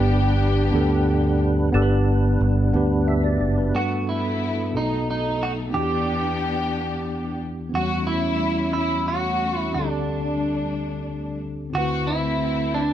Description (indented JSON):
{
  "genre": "slow gospel",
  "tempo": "60 BPM (dotted quarters)",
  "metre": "6/8",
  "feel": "straight",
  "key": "G major",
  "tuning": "A4 = 439 Hz",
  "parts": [
    { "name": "warm studio string section", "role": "melody", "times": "0.0-12.9 s", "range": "F#3 to G4", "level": "-27 LUFS", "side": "left 3 dB", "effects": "none" },
    { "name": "tine electric piano", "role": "accompaniment", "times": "0.0-12.9 s", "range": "B1 to E5", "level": "-24 LUFS", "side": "equal", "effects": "fast stereo tremolo" },
    { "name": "percussive tonewheel organ", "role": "sustained chords", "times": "0.0-3.9 s", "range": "G3 to E5", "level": "-28 LUFS", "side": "right 3 dB", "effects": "slow rotary speaker, chorus vibrato" },
    { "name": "fingered electric bass", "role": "bass", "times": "0.0-3.7 s", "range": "F#1 to D2", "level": "-21 LUFS", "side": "equal", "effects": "none" },
    { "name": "clean electric guitar", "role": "melody", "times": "3.8-12.9 s", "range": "D4 to G4", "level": "-27 LUFS", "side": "right 4 dB", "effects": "lush chorus" }
  ],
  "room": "light reverb",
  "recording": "none",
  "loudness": "-20 LUFS",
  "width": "side -11 dB against mid",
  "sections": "0.0-1.7 A section; 1.7-3.7 B section; 3.7-12.9 C section",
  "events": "none",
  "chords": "0.0 G; 3.7 Gmaj9; 4.7 B7; 5.7 Em7; 7.7 A13/E; 9.7 D7sus4; 11.7 D13"
}